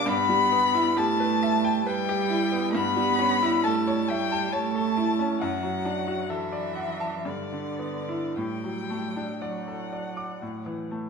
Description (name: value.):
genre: classical, slow romantic movement for piano trio.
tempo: 52-69 BPM.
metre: 3/4.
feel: rubato.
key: D major.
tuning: A4 = 442 Hz.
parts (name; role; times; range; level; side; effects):
muted violin; melody; 0.0-10.9 s; D5 to B5; -27 LUFS; left 6 dB; none.
muted cello; second line; 0.0-10.9 s; D3 to B3; -30 LUFS; right 10 dB; none.
bright concert grand piano; accompaniment; 0.0-11.1 s; F#2 to D6; -28 LUFS; equal; none.
room: moderate recital hall reverb, RT60 1.4 s.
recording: minimal, uncompressed stereo recording.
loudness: -24 LUFS.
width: side -5 dB against mid.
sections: 0.0-11.1 A section.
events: none.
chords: 0.1 Em/G; 2.7 A7/G; 5.4 D/F#; 7.2 Em7/G; 8.4 D/A; 10.4 A5.